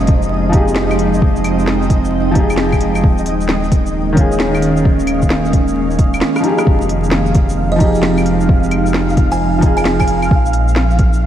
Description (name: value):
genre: future garage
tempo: 132 BPM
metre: 4/4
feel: swing 65% on 16ths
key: F minor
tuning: A4 = 439 Hz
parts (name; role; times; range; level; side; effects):
- felt-muted upright piano; accompaniment; 0.0-10.3 s; Eb3 to Ab4; -20 LUFS; left 2 dB; sidechain pumping, diffuse ambient delay
- ethereal airy pad; sustained chords; 0.0-11.3 s; Bb2 to G5; -18 LUFS; right 1 dB; ensemble chorus, built-in reverb, sidechain pumping
- warm sub bass; bass; 0.0-11.3 s; Eb1 to Bb1; -19 LUFS; equal; sidechain pumping
- organic electronic drum kit; drums; 0.0-11.2 s; claves, hi-hat, rim click, shaker, snare drum; -21 LUFS; equal; none
- flickering grainy texture; texture; 0.0-11.3 s; Eb5 to F5; -26 LUFS; equal; built-in reverb
- electronic kick drum; drums; 0.1-11.1 s; none; -13 LUFS; equal; none
- buzzing kalimba; melody; 7.7-10.4 s; Eb5 to Ab5; -21 LUFS; right 3 dB; diffuse ambient delay
room: moderate lush hall reverb, RT60 2.2 s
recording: dreamy mix soaked in reverb, vinyl crackle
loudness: -11 LUFS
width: side -11 dB against mid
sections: 0.0-11.3 A section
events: drum fill 6.2-6.7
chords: 0.0 Fm9; 3.0 Eb9sus4; 6.7 Fm9; 10.3 Bb7(no3)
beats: 0.31 0.76 | 1.22 1.67 2.12 2.58 | 3.03 3.49 3.94 4.40 | 4.85 5.31 5.76 6.22 | 6.67 7.12 7.58 8.03 | 8.49 8.94 9.40 9.85 | 10.31 10.76 11.22